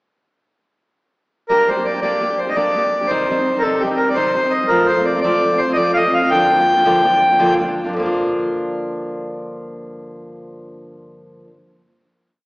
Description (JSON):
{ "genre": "celtic folk, Celtic slip jig", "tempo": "111 BPM (dotted quarters)", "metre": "9/8", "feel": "straight", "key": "G minor", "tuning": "A4 = 439 Hz", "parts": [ { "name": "accordion", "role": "melody", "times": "1.5-7.5 s", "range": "G4 to G5", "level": "-15 LUFS", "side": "equal", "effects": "none" }, { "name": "fingerpicked steel-string acoustic guitar", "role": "accompaniment", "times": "1.5-11.6 s", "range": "G2 to G4", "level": "-20 LUFS", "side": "equal", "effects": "none" } ], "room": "wet scoring stage reverb, RT60 1.6 s", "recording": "recorded in a church or concert hall, AM radio sound", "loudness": "-14 LUFS", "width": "side -25 dB against mid", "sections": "1.5-7.9 A section; 7.9-11.2 final chord", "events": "none", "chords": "1.5 Gm; 3.1 Cm; 4.7 F; 6.3 Gm7" }